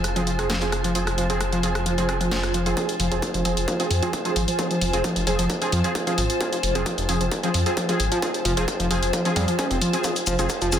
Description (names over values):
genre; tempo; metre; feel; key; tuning
driving peak-time techno; 132 BPM; 4/4; straight; F minor; A4 = 442 Hz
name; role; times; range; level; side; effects
detuned saw bass; bass; 0.0-10.8 s; F1 to F2; -26 LUFS; equal; sidechain pumping
techno drum kit; drums; 0.0-10.8 s; hi-hat, rim click, shaker, snare drum; -28 LUFS; equal; sidechain pumping on hats, soft clipping on snare, sidechain pumping on perc
granular cloud pad; texture; 0.0-10.8 s; F4 to Ab5; -29 LUFS; equal; built-in reverb, sidechain pumping
overdriven synth lead; riff; 0.2-10.8 s; F3 to Db4; -27 LUFS; equal; distortion, tube saturation, sidechain pumping, dub echo
rave stab; stabs; 0.2-10.8 s; F3 to Ab4; -28 LUFS; right 2 dB; chorus, built-in reverb, sidechain pumping, tape echo
electronic kick drum; drums; 2.8-10.6 s; none; -30 LUFS; left 1 dB; distortion, high-pass filter on kick, high-pass filter on room
room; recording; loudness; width
moderate plate reverb, RT60 1.6 s, digital ambience; dense, heavily limited modern master; -20 LUFS; side -9 dB against mid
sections
0.0-2.8 A section; 2.8-10.8 B section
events
build-up 2.8-10.8; filter sweep on analog synth lead 2.8-10.8; drum fill 10.0-10.8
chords
0.0 Fm